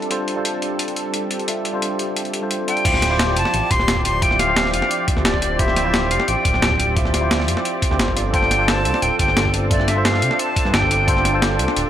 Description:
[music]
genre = liquid drum and bass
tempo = 175 BPM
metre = 4/4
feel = straight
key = D minor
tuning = A4 = 440 Hz
[part]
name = mellow tine electric piano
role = accompaniment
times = 0.0-11.9 s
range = G3 to E5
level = -24 LUFS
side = equal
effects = medium stereo tremolo, dub echo
[part]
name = lush unison pad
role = sustained chords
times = 0.0-11.9 s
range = F3 to D5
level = -25 LUFS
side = right 1 dB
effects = chorus
[part]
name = breakbeat sampler-style drum kit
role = drums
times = 0.0-11.8 s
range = crash cymbal, hi-hat, snare drum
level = -22 LUFS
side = equal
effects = none
[part]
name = bright reedy silver concert flute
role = melody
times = 2.7-11.4 s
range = D5 to C6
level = -21 LUFS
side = left 1 dB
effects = dub echo
[part]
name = smooth synth bass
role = bass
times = 2.9-11.8 s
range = D1 to G2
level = -22 LUFS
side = equal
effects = none
[part]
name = electronic kick drum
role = drums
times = 2.9-11.1 s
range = none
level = -22 LUFS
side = equal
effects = none
[sound]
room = light reverb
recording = none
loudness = -16 LUFS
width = side -10 dB against mid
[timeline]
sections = 0.0-2.9 A section; 2.9-11.9 B section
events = drop 2.9-11.9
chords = 0.0 G7sus4; 2.9 Dm11

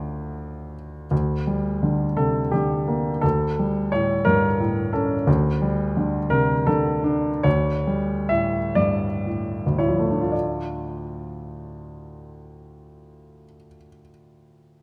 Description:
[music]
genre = classical, romantic character piece for solo piano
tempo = 35-60 BPM (dotted quarters)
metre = 6/8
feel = rubato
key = D minor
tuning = A4 = 445 Hz
[part]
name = warm baby grand piano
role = solo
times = 0.0-14.8 s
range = D2 to E5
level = -23 LUFS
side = equal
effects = none
[sound]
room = moderate concert hall reverb, RT60 2.1 s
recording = none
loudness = -23 LUFS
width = mono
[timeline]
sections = 0.0-1.1 A section; 1.1-10.3 B section; 10.3-14.8 C section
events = slowing down 4.3-10.3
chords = 0.0 Dm; 1.1 Gm/D; 3.2 A7/D; 5.3 G5/D; 7.4 A7/D; 10.3 Dm

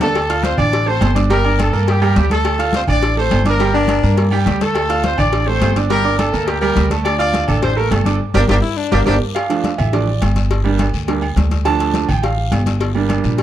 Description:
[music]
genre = latin, salsa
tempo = 208 BPM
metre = 4/4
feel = straight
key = D minor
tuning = A4 = 440 Hz
[part]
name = warm horn section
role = melody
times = 0.0-9.1 s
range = G3 to D5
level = -20 LUFS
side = left 2 dB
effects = none
[part]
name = bright concert grand piano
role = accompaniment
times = 0.0-13.4 s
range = F3 to F6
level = -20 LUFS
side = right 7 dB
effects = none
[part]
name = upright bass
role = bass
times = 0.0-13.4 s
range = G1 to G2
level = -18 LUFS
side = equal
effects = none
[part]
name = congas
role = percussion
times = 0.0-13.4 s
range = none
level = -23 LUFS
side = left 2 dB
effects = none
[part]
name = cowbell and bongos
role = percussion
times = 0.0-13.4 s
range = none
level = -26 LUFS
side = left 8 dB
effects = none
[part]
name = guiro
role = percussion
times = 0.0-13.4 s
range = none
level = -34 LUFS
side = left 15 dB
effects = none
[part]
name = timbales and agogo bells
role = percussion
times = 0.0-13.4 s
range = none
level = -27 LUFS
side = right 5 dB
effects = none
[part]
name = breathy baritone saxophone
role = second line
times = 3.7-4.4, 8.6-9.3 s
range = Bb3 to E4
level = -21 LUFS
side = left 6 dB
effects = none
[sound]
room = small room ambience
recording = dry, close 1970s-style studio recording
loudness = -14 LUFS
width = side -11 dB against mid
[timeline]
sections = 0.1-9.4 A section; 9.4-13.4 B section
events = band accent 8.2-9.4; drum fill 8.5-9.4; grand piano solo 9.4-13.4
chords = 0.1 Dm; 1.3 Gm; 2.4 Dm; 3.6 Gm; 4.8 Dm; 5.9 Gm; 7.1 Dm; 8.2 Gm; 9.4 Dm; 10.5 Gm; 11.7 Dm; 12.8 Gm

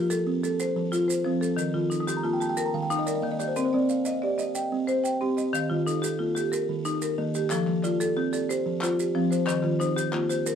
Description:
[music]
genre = southern african traditional, mbira-style interlocking cycle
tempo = 122 BPM (dotted quarters)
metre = 12/8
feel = straight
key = F mixolydian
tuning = A4 = 438 Hz
[part]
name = buzzing kalimba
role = arpeggios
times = 0.0-10.6 s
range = Eb3 to Eb6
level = -28 LUFS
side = right 4 dB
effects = none
[part]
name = marimba with medium hard mallets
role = arpeggios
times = 0.0-10.6 s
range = Eb3 to G5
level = -26 LUFS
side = left 3 dB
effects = none
[part]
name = maracas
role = percussion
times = 0.1-10.6 s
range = none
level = -38 LUFS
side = right 6 dB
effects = none
[part]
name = group handclap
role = percussion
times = 7.5-10.3 s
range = none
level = -36 LUFS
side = left 4 dB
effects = none
[sound]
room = light reverb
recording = dark, warm production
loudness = -24 LUFS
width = side -8 dB against mid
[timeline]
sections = 0.0-7.5 A section; 7.5-10.6 B section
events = kalimba fill 1.8-3.6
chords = 0.0 F; 1.6 Eb; 3.6 Cm; 5.5 Eb; 7.5 F; 9.5 Eb

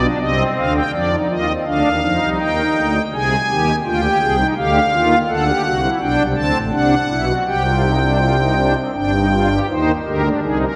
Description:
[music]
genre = classical, baroque-style 3-part fugue for pipe organ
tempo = 82 BPM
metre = 3/4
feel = straight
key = C minor from 5.3 s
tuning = A4 = 440 Hz
[part]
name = pipe organ, strings celeste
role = solo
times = 0.0-10.8 s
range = G1 to A5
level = -17 LUFS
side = equal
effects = none
[sound]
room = wet church reverb, RT60 3.1 s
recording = none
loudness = -17 LUFS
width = mono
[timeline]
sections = 0.9-9.7 A section; 9.7-10.8 B section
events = none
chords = 0.2 Cm; 0.9 Cmadd11; 2.4 Eb; 3.1 Ab/C; 4.6 Ebmaj9/D; 5.3 D7; 7.5 Gsus4/C; 8.9 G5; 9.7 Cm

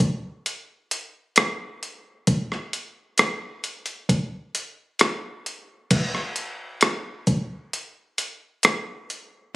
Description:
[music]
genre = pop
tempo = 66 BPM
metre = 4/4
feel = straight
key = none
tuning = none
[part]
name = boom bap sampler-style drum kit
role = drums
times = 0.0-9.3 s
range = crash cymbal, hi-hat, kick drum, rim click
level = -20 LUFS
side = equal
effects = none
[sound]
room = light reverb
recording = recorded on a phone in the room, studio reverb, compression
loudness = -23 LUFS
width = side -20 dB against mid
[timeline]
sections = 0.0-5.9 A section; 5.9-9.6 B section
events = none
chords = none

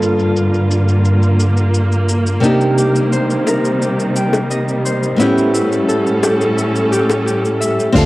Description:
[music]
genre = sunset chillout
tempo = 87 BPM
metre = 4/4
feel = straight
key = unclear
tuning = A4 = 439 Hz
[part]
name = nylon-string guitar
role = accompaniment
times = 0.0-8.1 s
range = G2 to A4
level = -17 LUFS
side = equal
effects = auto-pan, tape echo
[part]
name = warm symphonic string section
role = sustained chords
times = 0.0-8.1 s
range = G2 to A4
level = -15 LUFS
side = equal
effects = none
[part]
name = electronic shaker and hi-hat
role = drums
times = 0.0-8.1 s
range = none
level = -28 LUFS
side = left 1 dB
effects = overdrive, low-pass filter on hats, low-pass filter on perc, low-pass filter on snare, low-pass filter on toms
[part]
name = Celtic harp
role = arpeggios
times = 2.4-8.1 s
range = E4 to G5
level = -21 LUFS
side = left 2 dB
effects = tape echo, shimmer reverb
[part]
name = bongos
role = percussion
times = 3.5-7.2 s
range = none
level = -18 LUFS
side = left 2 dB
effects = none
[part]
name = sustaining fretless electric bass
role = bass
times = 8.0-8.1 s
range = D2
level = -11 LUFS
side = equal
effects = tube saturation
[part]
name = electronic kick drum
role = drums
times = 8.0-8.1 s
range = none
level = -16 LUFS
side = equal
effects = overdrive
[part]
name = downlifter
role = sound effects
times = 8.0-8.1 s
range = none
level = -23 LUFS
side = equal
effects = none
[sound]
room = wet studio reverb, RT60 0.5 s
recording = home recording on cassette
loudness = -13 LUFS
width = side -18 dB against mid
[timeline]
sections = 0.0-7.9 A section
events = none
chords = 0.0 Gm7; 2.4 Cm7; 5.2 A7

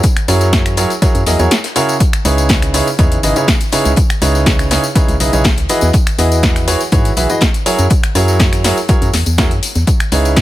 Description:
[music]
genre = piano house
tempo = 122 BPM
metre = 4/4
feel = straight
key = C# dorian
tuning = A4 = 438 Hz
[part]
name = electronic kick drum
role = drums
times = 0.0-10.4 s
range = none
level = -13 LUFS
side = equal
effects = overdrive
[part]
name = punchy analog drum machine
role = drums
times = 0.0-10.4 s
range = finger snaps, hi-hat, snare drum, tambourine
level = -18 LUFS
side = left 1 dB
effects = overdrive
[part]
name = warm soul drum kit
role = drums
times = 0.0-10.4 s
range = hi-hat, snare drum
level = -29 LUFS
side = left 4 dB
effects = none
[part]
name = tambourine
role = percussion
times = 0.0-10.4 s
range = none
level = -28 LUFS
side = left 5 dB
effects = none
[part]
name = clear grand piano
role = riff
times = 0.3-10.4 s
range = C#3 to E5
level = -16 LUFS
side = right 1 dB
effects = sidechain pumping, dub echo
[part]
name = organ-like FM bass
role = bass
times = 0.3-10.4 s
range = G#1 to G#2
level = -15 LUFS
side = equal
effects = sidechain pumping
[sound]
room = small room ambience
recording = none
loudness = -10 LUFS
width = side -15 dB against mid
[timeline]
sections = 0.0-10.4 A section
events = kick drops out 1.5-2.0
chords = 0.0 F#9; 2.0 C#m9; 5.7 Emaj9; 7.7 F#9; 9.9 C#m9

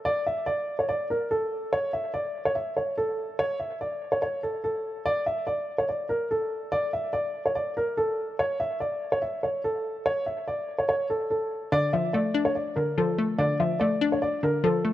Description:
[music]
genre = hip hop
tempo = 144 BPM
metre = 4/4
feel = half-time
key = D harmonic minor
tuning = A4 = 440 Hz
[part]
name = dark upright piano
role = melody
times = 0.0-14.9 s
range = A4 to E5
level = -26 LUFS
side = equal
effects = tape echo
[part]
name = hollow square pluck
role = accompaniment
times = 11.7-14.9 s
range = D3 to D4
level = -25 LUFS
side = left 3 dB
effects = chorus
[sound]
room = light reverb, studio reverb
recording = none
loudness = -25 LUFS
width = side -13 dB against mid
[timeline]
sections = 0.0-11.7 A section; 11.7-14.9 B section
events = none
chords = 0.0 N.C.; 11.7 Dm

